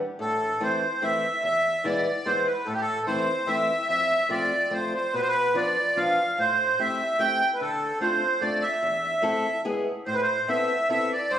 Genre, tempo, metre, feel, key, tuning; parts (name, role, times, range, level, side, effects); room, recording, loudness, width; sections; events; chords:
musette waltz; 146 BPM; 3/4; straight; A minor; A4 = 439 Hz
accordion; melody; 0.2-11.4 s; G4 to G5; -23 LUFS; right 1 dB; light tremolo tuning
fingerpicked old ladder-braced acoustic guitar; accompaniment; 0.2-11.4 s; E2 to A4; -30 LUFS; left 2 dB
moderate recital hall reverb, RT60 1.7 s; recorded on a phone in the room, studio reverb, compression; -22 LUFS; side -10 dB against mid
0.2-11.4 A section
0.2 Am; 1.4 E; 2.7 Am; 3.9 F; 5.1 Bdim; 6.4 Am7; 7.6 Dm7; 8.8 Am/E; 9.7 E; 10.1 Amadd9